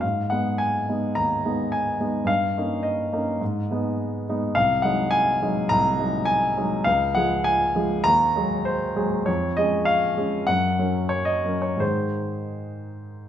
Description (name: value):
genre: classical, romantic character piece for solo piano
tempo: 80-109 BPM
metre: 4/4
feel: rubato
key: unclear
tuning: A4 = 437 Hz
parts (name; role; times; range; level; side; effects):
- warm grand piano; solo; 0.0-13.3 s; C2 to A#5; -21 LUFS; equal; none
room: moderate recital hall reverb, RT60 1.5 s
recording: minimal, uncompressed stereo recording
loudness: -21 LUFS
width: side -10 dB against mid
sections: 0.0-13.3 A section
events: none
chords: 0.0 G#m; 2.3 D#7/G; 3.4 G#m; 4.6 Ab7/C; 6.9 Db; 8.1 Ab7/Eb; 9.3 Db/F; 10.5 Gb; 11.8 Ab